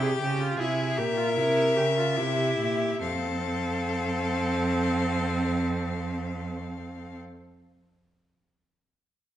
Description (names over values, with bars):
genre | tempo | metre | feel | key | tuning
classical, baroque-style fugue for string quartet | 70-80 BPM | 4/4 | straight | unclear | A4 = 440 Hz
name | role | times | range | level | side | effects
rich violin | melody | 0.0-7.2 s | E5 to G5 | -33 LUFS | left 7 dB | none
warm violin | second line | 0.0-7.2 s | G4 to Bb4 | -30 LUFS | left 2 dB | none
rich viola | accompaniment | 0.0-7.2 s | C4 to Ab4 | -30 LUFS | right 1 dB | none
rich cello | bass | 0.0-7.2 s | F2 to Db3 | -30 LUFS | right 3 dB | none
room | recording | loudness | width
wet recital hall reverb, RT60 1.4 s | nothing above 10.9 kHz | -24 LUFS | side -12 dB against mid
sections
0.0-3.0 A section; 3.0-6.4 B section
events
slowing down 0.0-3.0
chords
0.0 C7; 3.0 F